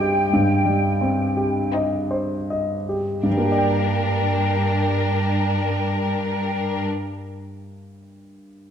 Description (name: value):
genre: classical, romantic movement for piano and orchestra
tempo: 37-48 BPM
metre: 4/4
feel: rubato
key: G minor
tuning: A4 = 443 Hz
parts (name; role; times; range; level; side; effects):
- warm grand piano; melody; 0.0-8.7 s; G2 to G5; -22 LUFS; equal; none
- large flute ensemble; second line; 0.0-6.8 s; G5; -26 LUFS; left 1 dB; none
- rich studio violin section; second line; 0.0-6.8 s; D4 to C5; -26 LUFS; left 4 dB; none
- warm studio cello section; bass; 0.3-6.8 s; G2; -25 LUFS; right 3 dB; none
room: moderate scoring stage reverb, RT60 1.7 s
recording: none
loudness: -19 LUFS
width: side -8 dB against mid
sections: 0.0-3.3 A section; 3.3-8.7 B section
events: slowing down 0.0-3.3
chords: 0.0 Cm/G